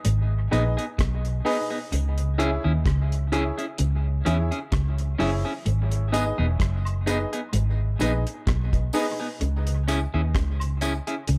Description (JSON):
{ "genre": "dub reggae", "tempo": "64 BPM", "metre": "4/4", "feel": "swing 55% on 16ths", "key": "G# minor", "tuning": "A4 = 440 Hz", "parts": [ { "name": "clean electric guitar", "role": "riff", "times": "0.0-11.4 s", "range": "E2 to E3", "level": "-34 LUFS", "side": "equal", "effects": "none" }, { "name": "cloth-damped thuddy drum kit", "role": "drums", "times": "0.0-11.4 s", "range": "hi-hat, kick drum, rim click", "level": "-31 LUFS", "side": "equal", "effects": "none" }, { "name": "vintage muted fingered electric bass", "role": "bass", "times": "0.1-11.4 s", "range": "E1 to E2", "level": "-26 LUFS", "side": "equal", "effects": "none" }, { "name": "clean electric guitar", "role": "accompaniment", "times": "0.5-11.1 s", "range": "B3 to G#4", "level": "-33 LUFS", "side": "equal", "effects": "high-pass filter, dub echo" }, { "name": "warm upright piano", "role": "stabs", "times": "0.5-9.2 s", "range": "D#4 to E5", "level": "-33 LUFS", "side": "equal", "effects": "dub echo" }, { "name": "tambourine and woodblock", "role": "percussion", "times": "6.1-11.1 s", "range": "none", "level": "-42 LUFS", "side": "equal", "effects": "high-pass filter on perc, dub echo" } ], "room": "light reverb", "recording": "none", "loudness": "-25 LUFS", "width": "mono", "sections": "0.0-11.4 A section", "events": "none", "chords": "0.0 G#m; 1.9 C#m; 5.7 G#m; 9.4 C#m" }